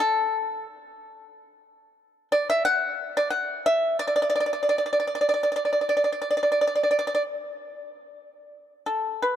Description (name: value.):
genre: chinese traditional, Chinese solo plucked strings.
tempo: 82-92 BPM.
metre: 4/4.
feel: rubato.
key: D gong mode.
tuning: A4 = 440 Hz.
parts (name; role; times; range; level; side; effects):
pipa; solo; 0.0-9.4 s; D3 to F#5; -22 LUFS; equal; none.
room: moderate plate reverb, RT60 3.8 s.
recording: heard from further back in the room.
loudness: -22 LUFS.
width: side -10 dB against mid.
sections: 0.0-8.2 A section; 8.2-9.4 B section.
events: none.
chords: none.